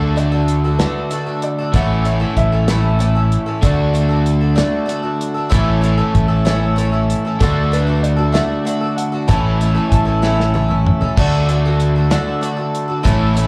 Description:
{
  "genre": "folk rock and heartland rock",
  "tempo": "64 BPM (dotted quarters)",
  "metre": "6/8",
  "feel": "straight",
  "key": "D major",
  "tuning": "A4 = 438 Hz",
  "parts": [
    { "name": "dark upright piano", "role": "second line", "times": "0.0-2.7, 7.4-10.8 s", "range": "A4 to A5", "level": "-28 LUFS", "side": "equal", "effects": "slapback echo" },
    { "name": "picked twelve-string acoustic guitar", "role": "accompaniment", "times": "0.0-13.5 s", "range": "A2 to A4", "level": "-24 LUFS", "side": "equal", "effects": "lush chorus, slapback echo" },
    { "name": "crunchy overdriven guitar", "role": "riff", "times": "0.0-13.5 s", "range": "A2 to F#4", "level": "-24 LUFS", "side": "equal", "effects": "none" },
    { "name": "fingered electric bass", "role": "bass", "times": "0.0-13.5 s", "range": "A1 to D2", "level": "-18 LUFS", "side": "equal", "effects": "none" },
    { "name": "damped 70s drum kit", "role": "drums", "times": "0.2-13.5 s", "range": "crash cymbal, hi-hat, kick drum, snare drum, toms", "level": "-21 LUFS", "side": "equal", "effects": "none" },
    { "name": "pedal harmonium", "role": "sustained chords", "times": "3.6-13.5 s", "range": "E4 to A5", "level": "-31 LUFS", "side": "equal", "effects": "none" }
  ],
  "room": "light reverb, small room ambience",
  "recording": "live gig heard through the venue's PA, club ambience",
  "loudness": "-16 LUFS",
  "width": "mono",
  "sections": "0.0-11.2 A section; 11.2-13.5 A section",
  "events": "drum fill 10.2-11.2",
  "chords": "0.0 D; 1.7 A; 3.6 D; 5.5 A; 7.4 D; 9.3 A; 11.2 D"
}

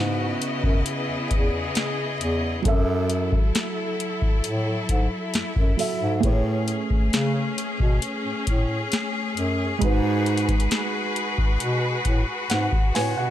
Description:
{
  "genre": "contemporary R&B",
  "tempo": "67 BPM",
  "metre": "4/4",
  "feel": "straight",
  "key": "C# minor",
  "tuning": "A4 = 440 Hz",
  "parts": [
    { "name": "felt-muted upright piano", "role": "accompaniment", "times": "0.0-13.3 s", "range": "C#3 to G#5", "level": "-29 LUFS", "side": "right 5 dB", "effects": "none" },
    { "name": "rich studio string section", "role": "sustained chords", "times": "0.0-13.3 s", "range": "C#3 to D#5", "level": "-28 LUFS", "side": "left 2 dB", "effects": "none" },
    { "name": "mellow bass clarinet", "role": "bass", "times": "0.0-13.3 s", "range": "E2 to C#3", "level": "-25 LUFS", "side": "equal", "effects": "none" },
    { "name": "booming analog drum machine", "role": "drums", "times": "0.4-13.2 s", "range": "hi-hat, kick drum, snare drum", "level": "-23 LUFS", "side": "left 1 dB", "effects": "none" }
  ],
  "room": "small room reverb",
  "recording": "none",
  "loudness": "-21 LUFS",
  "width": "side -12 dB against mid",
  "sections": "0.0-13.3 A section",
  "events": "none",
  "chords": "0.0 C#m11; 2.6 F#m7; 6.2 Amaj9; 9.8 G#m7"
}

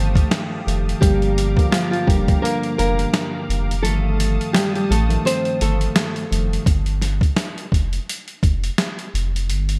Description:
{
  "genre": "hip hop, boom-bap hip-hop",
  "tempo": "85 BPM",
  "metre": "4/4",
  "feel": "swing 57% on 16ths",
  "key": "unclear",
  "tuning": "A4 = 441 Hz",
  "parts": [
    { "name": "nylon-string guitar", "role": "melody", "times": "0.0-6.6 s", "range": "F3 to C5", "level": "-25 LUFS", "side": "equal", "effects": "high-pass filter, low-pass filter, delay" },
    { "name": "tine electric piano", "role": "accompaniment", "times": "0.0-6.6 s", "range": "G2 to Bb3", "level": "-28 LUFS", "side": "equal", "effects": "high-pass filter, low-pass filter" },
    { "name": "lush unison pad", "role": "sustained chords", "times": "0.0-6.6 s", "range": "G4 to Eb6", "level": "-36 LUFS", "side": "equal", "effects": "chorus, high-pass filter, low-pass filter" },
    { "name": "soft dub sub bass", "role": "bass", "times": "0.0-9.8 s", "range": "F1 to A1", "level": "-23 LUFS", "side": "equal", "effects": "none" },
    { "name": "boom bap sampler-style drum kit", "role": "drums", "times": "0.2-9.8 s", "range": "hi-hat, kick drum, snare drum", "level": "-23 LUFS", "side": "equal", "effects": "gated reverb" }
  ],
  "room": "light reverb",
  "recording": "bright 1980s-style digital production",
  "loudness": "-20 LUFS",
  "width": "mono",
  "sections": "0.0-6.7 A section; 6.7-9.8 B section",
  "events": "kick muted 3.8-6.7",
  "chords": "0.0 F9/G; 1.0 Gm7; 3.8 F9/G; 6.7 Fsus2"
}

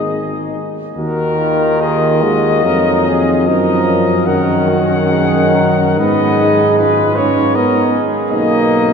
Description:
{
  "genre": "classical, hymn-like piece for brass band",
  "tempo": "63-80 BPM",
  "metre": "3/4",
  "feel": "rubato",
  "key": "Eb minor",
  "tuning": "A4 = 440 Hz",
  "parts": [
    { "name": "warm cornet", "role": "melody", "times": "0.0-8.9 s", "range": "Bb4 to Gb5", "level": "-19 LUFS", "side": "left 7 dB", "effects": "none" },
    { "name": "warm flugelhorn", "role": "second line", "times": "0.0-8.8 s", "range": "Gb4 to Cb5", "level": "-21 LUFS", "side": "right 4 dB", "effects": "none" },
    { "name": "warm trombone", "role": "accompaniment", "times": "0.0-8.9 s", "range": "Eb3 to Db4", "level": "-16 LUFS", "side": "right 1 dB", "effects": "none" },
    { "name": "warm trombone section", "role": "accompaniment", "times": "0.0-8.9 s", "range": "Cb4 to Gb4", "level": "-22 LUFS", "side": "left 4 dB", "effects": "none" },
    { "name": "warm tuba", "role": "bass", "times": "0.0-8.9 s", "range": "G#1 to Ab2", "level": "-17 LUFS", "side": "equal", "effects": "none" }
  ],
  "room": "wet cathedral reverb, RT60 6.9 s",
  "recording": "none",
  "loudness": "-11 LUFS",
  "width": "side -6 dB against mid",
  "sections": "1.0-8.9 A section",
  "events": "none",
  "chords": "0.0 G#5; 1.0 Ebm; 3.5 Ebm/Gb; 6.0 Abm; 8.3 Abm/Cb"
}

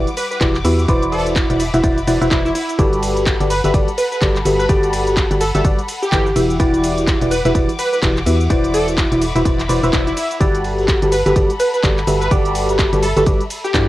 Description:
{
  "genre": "piano house",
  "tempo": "126 BPM",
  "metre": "4/4",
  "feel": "swing 59% on 16ths",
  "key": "G major",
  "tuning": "A4 = 440 Hz",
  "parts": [
    { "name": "warm studio string section", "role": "sustained chords", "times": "0.0-13.9 s", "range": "G3 to D6", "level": "-28 LUFS", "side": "left 2 dB", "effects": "sidechain pumping, cassette tape" },
    { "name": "barking FM electric piano", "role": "riff", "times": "0.0-13.9 s", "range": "E3 to E5", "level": "-18 LUFS", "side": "equal", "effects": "phaser, cassette tape, sidechain pumping" },
    { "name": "organ-like FM bass", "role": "bass", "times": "0.0-13.9 s", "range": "E1 to G2", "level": "-20 LUFS", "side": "equal", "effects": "sidechain pumping" },
    { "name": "house drum kit", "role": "drums", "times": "0.1-13.9 s", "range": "cabasa, handclaps, hi-hat, ride cymbal", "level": "-25 LUFS", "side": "equal", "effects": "cassette tape" },
    { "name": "plucky unison lead", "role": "melody", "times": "0.2-13.9 s", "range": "E4 to B4", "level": "-20 LUFS", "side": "equal", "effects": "lush chorus, cassette tape, analog delay" },
    { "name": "electronic kick drum", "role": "drums", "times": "0.4-13.9 s", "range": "none", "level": "-18 LUFS", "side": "equal", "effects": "cassette tape" }
  ],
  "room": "light reverb",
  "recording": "home recording on cassette",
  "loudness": "-14 LUFS",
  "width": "side -16 dB against mid",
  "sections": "0.0-13.9 A section",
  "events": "none",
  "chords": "0.0 Em9; 0.9 Cmaj9#11/E; 2.8 Gmaj9; 6.4 Em9; 8.5 Cmaj9#11/E; 10.4 Gmaj9"
}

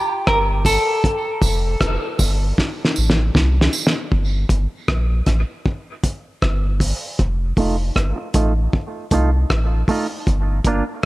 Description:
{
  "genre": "dub reggae",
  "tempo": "78 BPM",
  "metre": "4/4",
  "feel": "straight",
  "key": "G minor",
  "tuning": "A4 = 440 Hz",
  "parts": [
    { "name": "clean electric guitar", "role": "melody", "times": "0.0-3.7 s", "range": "G4 to Bb4", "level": "-21 LUFS", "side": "equal", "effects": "spring reverb, dub echo" },
    { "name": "soft dub sub bass", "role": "bass", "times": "0.3-10.8 s", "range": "F1 to C2", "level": "-18 LUFS", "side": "equal", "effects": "none" },
    { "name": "cloth-damped thuddy drum kit", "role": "drums", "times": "0.3-10.8 s", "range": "hi-hat, kick drum, rim click, snare drum", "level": "-19 LUFS", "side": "equal", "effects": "none" },
    { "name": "tambourine", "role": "percussion", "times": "0.7-3.9 s", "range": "none", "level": "-28 LUFS", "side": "right 5 dB", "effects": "high-pass filter on perc, dub echo" },
    { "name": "semi-hollow electric guitar", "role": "accompaniment", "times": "4.5-10.8 s", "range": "A3 to F4", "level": "-23 LUFS", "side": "right 3 dB", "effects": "high-pass filter, low-pass filter, dub echo" }
  ],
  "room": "light reverb, small room ambience",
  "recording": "echo-heavy mix, lossy compression artefacts",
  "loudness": "-17 LUFS",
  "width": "side -18 dB against mid",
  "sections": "0.0-4.1 A section; 4.1-11.1 B section",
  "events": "break 0.0-4.1; filter sweep 1.0-7.2; drum fill 2.6-4.1",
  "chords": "0.0 N.C.; 1.0 F; 4.1 Gm7; 7.2 F7; 10.3 Gm7"
}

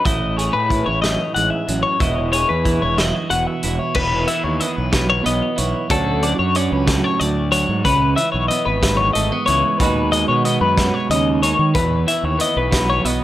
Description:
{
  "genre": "math rock and midwest emo",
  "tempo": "62 BPM (dotted quarters)",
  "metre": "6/8",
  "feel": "straight",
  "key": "E major",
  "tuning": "A4 = 439 Hz",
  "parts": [
    { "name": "twelve-string electric guitar", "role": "accompaniment", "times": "0.0-13.2 s", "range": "E2 to G#4", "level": "-22 LUFS", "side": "right 6 dB", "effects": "none" },
    { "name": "twelve-string electric guitar", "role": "arpeggios", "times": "0.0-13.2 s", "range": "A4 to F#5", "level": "-19 LUFS", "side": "left 4 dB", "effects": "spring reverb, analog delay" },
    { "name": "fuzz fingered electric bass", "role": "bass", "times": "0.1-13.2 s", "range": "E1 to D#3", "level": "-22 LUFS", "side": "equal", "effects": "overdrive" },
    { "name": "loose indie drum kit", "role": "drums", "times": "0.1-13.2 s", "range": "crash cymbal, hi-hat, kick drum, snare drum", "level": "-23 LUFS", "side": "equal", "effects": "none" }
  ],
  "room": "little or no reverb",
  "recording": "none",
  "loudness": "-16 LUFS",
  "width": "side -13 dB against mid",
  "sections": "0.0-4.0 A section; 4.0-13.2 B section",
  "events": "none",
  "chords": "0.1 Amaj9; 2.0 E69; 4.0 E5; 5.9 Dmaj7; 7.9 C#m7; 9.8 G#m7/D#; 11.8 E5"
}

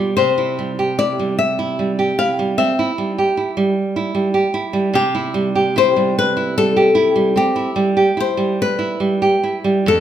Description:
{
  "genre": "romantic duo for nylon-string guitar and classical guitar",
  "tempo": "50 BPM (dotted quarters)",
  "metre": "12/8",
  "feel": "rubato",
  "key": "C major",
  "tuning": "A4 = 439 Hz",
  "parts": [
    { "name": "flamenco guitar", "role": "melody", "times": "0.0-10.0 s", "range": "G4 to F5", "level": "-18 LUFS", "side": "left 4 dB", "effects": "none" },
    { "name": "nylon-string guitar", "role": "accompaniment", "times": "0.0-10.0 s", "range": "F2 to G4", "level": "-17 LUFS", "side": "right 3 dB", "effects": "none" }
  ],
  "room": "moderate recital hall reverb, RT60 1.4 s",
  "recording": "minimal, uncompressed stereo recording",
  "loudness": "-15 LUFS",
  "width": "side -10 dB against mid",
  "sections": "0.0-10.0 A section",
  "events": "none",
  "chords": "0.2 C"
}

